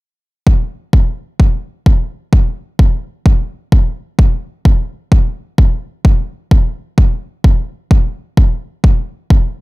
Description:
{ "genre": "house", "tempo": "129 BPM", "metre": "4/4", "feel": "swing 60% on 16ths", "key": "none", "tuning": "none", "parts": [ { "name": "electronic kick drum", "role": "drums", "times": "0.5-9.4 s", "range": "none", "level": "-9 LUFS", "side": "equal", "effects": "none" } ], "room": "little or no reverb", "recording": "none", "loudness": "-12 LUFS", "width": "side -22 dB against mid", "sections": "0.5-9.6 A section", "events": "none", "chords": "none", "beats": "| 0.47 0.93 1.40 1.86 | 2.33 2.79 3.26 3.72 | 4.19 4.65 5.12 5.58 | 6.05 6.51 6.98 7.44 | 7.91 8.37 8.84 9.30" }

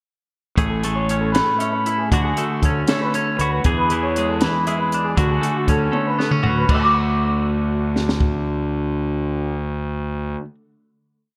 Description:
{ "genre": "math rock and midwest emo", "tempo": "79 BPM (dotted quarters)", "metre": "6/8", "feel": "straight", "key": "D lydian", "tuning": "A4 = 440 Hz", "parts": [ { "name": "twelve-string electric guitar", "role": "accompaniment", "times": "0.6-10.5 s", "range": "E2 to G#4", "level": "-25 LUFS", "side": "equal", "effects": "none" }, { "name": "fuzz fingered electric bass", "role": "bass", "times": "0.6-10.3 s", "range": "A1 to E2", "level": "-25 LUFS", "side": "equal", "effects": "overdrive" }, { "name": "compact cocktail drum kit", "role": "drums", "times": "0.6-8.3 s", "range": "crash cymbal, hi-hat, kick drum, snare drum, toms", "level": "-24 LUFS", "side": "equal", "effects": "none" }, { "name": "electric guitar through a small old amp", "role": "arpeggios", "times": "0.7-10.5 s", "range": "F#4 to D6", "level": "-25 LUFS", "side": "equal", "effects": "lush chorus" } ], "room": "moderate lush hall reverb, RT60 1.6 s", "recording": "bright 1980s-style digital production", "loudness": "-20 LUFS", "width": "mono", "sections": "0.6-6.7 A section; 6.7-9.7 final chord", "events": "drum fill 5.9-6.7", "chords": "0.6 Amaj9; 2.1 Dmaj7; 3.6 E7; 5.2 Dmaj7; 6.7 D", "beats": "| 0.58 1.35 | 2.12 2.88 | 3.64 4.41 | 5.17 5.92 | 6.68 7.44 | 8.20 8.96" }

